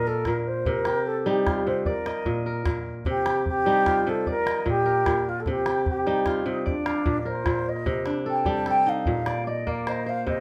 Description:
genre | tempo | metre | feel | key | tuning
west african traditional, West African string and xylophone music | 100 BPM (dotted quarters) | 12/8 | straight | C dorian | A4 = 440 Hz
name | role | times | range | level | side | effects
mellow baroque flute | melody | 0.0-10.4 s | D4 to A5 | -28 LUFS | equal | none
kora | arpeggios | 0.0-10.4 s | Bb2 to F5 | -29 LUFS | equal | none
calabash | percussion | 0.3-10.4 s | none | -34 LUFS | equal | none
room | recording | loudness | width
moderate studio reverb, RT60 0.6 s | none | -25 LUFS | mono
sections
0.0-7.9 A section; 7.9-10.4 B section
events
none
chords
0.0 Bb; 0.7 Cm; 1.9 Bb; 3.1 Cm; 4.3 Bb; 5.5 Cm; 6.7 Bb; 7.9 Cm; 9.1 Bb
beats
0.06 | 0.66 1.26 1.86 2.46 | 3.06 3.67 4.27 4.87 | 5.47 6.07 6.67 7.27 | 7.87 8.46 9.06 9.66 | 10.26

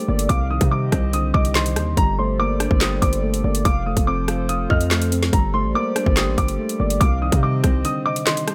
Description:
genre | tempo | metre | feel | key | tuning
hip hop, drill | 143 BPM | 4/4 | half-time | G minor | A4 = 440 Hz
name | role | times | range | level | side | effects
dark concert grand piano | melody | 0.0-8.5 s | Bb5 to F6 | -28 LUFS | equal | none
warm velvety synth lead | second line | 0.0-8.5 s | C5 to F5 | -32 LUFS | equal | chorus, tape echo
soft electric-piano-like synth keys | accompaniment | 0.0-8.5 s | C3 to F5 | -28 LUFS | equal | chorus
hollow soft pad | sustained chords | 0.0-8.5 s | F3 to Eb5 | -35 LUFS | equal | chorus
hard-hitting 808-style bass | bass | 0.1-7.8 s | F1 to C3 | -24 LUFS | equal | none
drill drum kit | drums | 0.2-8.5 s | handclaps, hi-hat, kick drum, rim click, snare drum | -23 LUFS | equal | none
room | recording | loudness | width
little or no reverb | none | -20 LUFS | mono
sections
0.0-8.5 A section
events
break 7.8-8.5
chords
0.3 Cmadd9; 2.0 Gmadd9; 3.7 F; 5.3 Gmadd9; 7.0 Cmadd9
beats
| 0.29 0.71 1.13 1.55 | 1.97 2.39 2.81 3.23 | 3.65 4.07 4.49 4.91 | 5.33 5.75 6.17 6.59 | 7.01 7.43 7.85 8.27

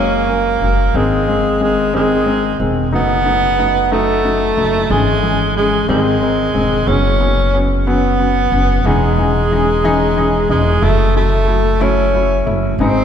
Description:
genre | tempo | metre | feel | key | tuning
six-eight pop ballad | 61 BPM (dotted quarters) | 6/8 | straight | unclear | A4 = 440 Hz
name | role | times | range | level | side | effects
breathy tenor saxophone | melody | 0.0-13.0 s | G#3 to C#4 | -16 LUFS | right 1 dB | none
felt-muted upright piano | accompaniment | 0.0-13.0 s | D#3 to E4 | -17 LUFS | left 2 dB | none
upright bass | bass | 0.0-13.0 s | E1 to G#1 | -18 LUFS | equal | none
room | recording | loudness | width
wet church reverb, RT60 3.4 s | recorded in a church or concert hall | -12 LUFS | side -8 dB against mid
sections
0.0-13.0 A section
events
none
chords
0.0 F#add9; 0.9 G#; 2.9 D#dim/F#; 4.9 C#m/G#; 5.9 G#; 6.9 F#sus4; 8.8 C#madd9/E; 10.8 F#m7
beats
| 0.95 1.94 | 2.93 3.91 | 4.90 5.89 | 6.88 7.86 | 8.85 9.84 | 10.82 11.81 | 12.79

